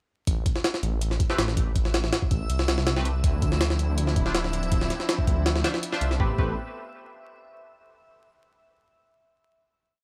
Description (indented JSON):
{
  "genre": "drum and bass, jungle",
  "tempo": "162 BPM",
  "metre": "4/4",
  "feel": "straight",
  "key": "A minor",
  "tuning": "A4 = 440 Hz",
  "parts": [
    { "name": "detuned saw bass", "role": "bass", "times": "0.3-6.6 s", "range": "D1 to D2", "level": "-29 LUFS", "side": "equal", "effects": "none" },
    { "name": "jungle sampler-style drum kit", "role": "drums", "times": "0.3-6.5 s", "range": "hi-hat, kick drum, snare drum", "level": "-27 LUFS", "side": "equal", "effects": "studio reverb" },
    { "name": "backwards swelling texture", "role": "texture", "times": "1.8-6.2 s", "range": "E5 to E6", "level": "-43 LUFS", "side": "equal", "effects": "built-in reverb" },
    { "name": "band-passed chord stab", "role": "stabs", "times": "1.3-6.5 s", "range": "A3 to E5", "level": "-36 LUFS", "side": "equal", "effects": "phaser, ensemble chorus, cassette tape, dub echo" },
    { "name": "muted studio string section", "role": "sustained chords", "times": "3.2-6.4 s", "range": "F3 to G4", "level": "-36 LUFS", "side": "equal", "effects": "vintage 12-bit sampler grit" }
  ],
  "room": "little or no reverb",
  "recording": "dry, gritty hardware recording, vinyl crackle",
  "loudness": "-25 LUFS",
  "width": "mono",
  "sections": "0.3-6.2 drop; 6.2-7.7 final chord",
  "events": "drop 0.3-6.2",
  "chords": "0.3 Am; 3.2 Dm9; 6.2 Am9"
}